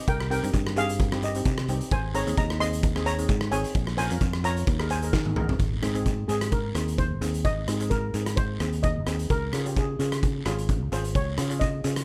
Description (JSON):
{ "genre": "calypso", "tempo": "130 BPM", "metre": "4/4", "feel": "swing 54% on 16ths", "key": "Ab major", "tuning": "A4 = 440 Hz", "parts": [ { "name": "steel pan", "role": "melody", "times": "0.0-12.0 s", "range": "G4 to C6", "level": "-33 LUFS", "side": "equal", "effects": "none" }, { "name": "steel pan", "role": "accompaniment", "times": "0.0-12.0 s", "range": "C4 to Bb4", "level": "-36 LUFS", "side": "equal", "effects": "none" }, { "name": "fingered electric bass", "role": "bass", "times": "0.1-12.0 s", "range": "Ab1 to Eb3", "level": "-31 LUFS", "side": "equal", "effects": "none" }, { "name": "oversized low-tuned drum kit", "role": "drums", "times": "0.1-12.0 s", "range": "hi-hat, kick drum, rim click, snare drum, toms", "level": "-30 LUFS", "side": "equal", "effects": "none" }, { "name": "guiro", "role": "percussion", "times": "0.1-12.0 s", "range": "none", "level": "-45 LUFS", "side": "equal", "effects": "none" } ], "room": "light reverb", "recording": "dark, warm production", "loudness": "-26 LUFS", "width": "mono", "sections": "0.0-5.6 A section; 5.6-12.0 B section", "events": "drum fill 5.1-5.6; steel pan solo 5.6-12.0", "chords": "0.0 Cm7; 1.9 Abadd9; 3.8 Bbm7; 4.7 Eb7sus4; 5.6 Abadd9; 9.3 Db" }